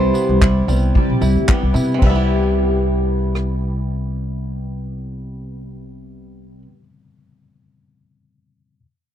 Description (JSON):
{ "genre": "acoustic pop", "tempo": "112 BPM", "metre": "4/4", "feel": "swing 55% on 16ths", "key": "C major", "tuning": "A4 = 438 Hz", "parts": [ { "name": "fingerpicked plugged-in steel-string acoustic guitar", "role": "melody", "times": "0.0-1.4 s", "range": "C5", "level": "-25 LUFS", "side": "right 3 dB", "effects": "none" }, { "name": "barky reed electric piano", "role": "accompaniment", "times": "0.0-8.8 s", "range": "G3 to B5", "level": "-28 LUFS", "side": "left 6 dB", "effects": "overdrive" }, { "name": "fingerpicked steel-string acoustic guitar", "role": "accompaniment", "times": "0.0-6.8 s", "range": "C3 to G4", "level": "-23 LUFS", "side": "equal", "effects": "double-tracked left and right" }, { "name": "bluegrass banjo", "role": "arpeggios", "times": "0.0-6.8 s", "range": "E3 to E4", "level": "-30 LUFS", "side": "right 9 dB", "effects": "tape echo" }, { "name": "upright bass", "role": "bass", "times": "0.0-6.7 s", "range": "B1 to C3", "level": "-19 LUFS", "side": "equal", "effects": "none" }, { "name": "unplugged drum kit", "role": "drums", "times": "0.1-3.5 s", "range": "crash cymbal, handclaps, kick drum, rim click, tambourine", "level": "-17 LUFS", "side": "equal", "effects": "none" } ], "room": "small room reverb", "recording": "dry, close 1970s-style studio recording", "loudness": "-15 LUFS", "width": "side -10 dB against mid", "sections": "0.0-2.0 A section; 2.0-6.3 B section", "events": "none", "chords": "0.0 Cmaj7" }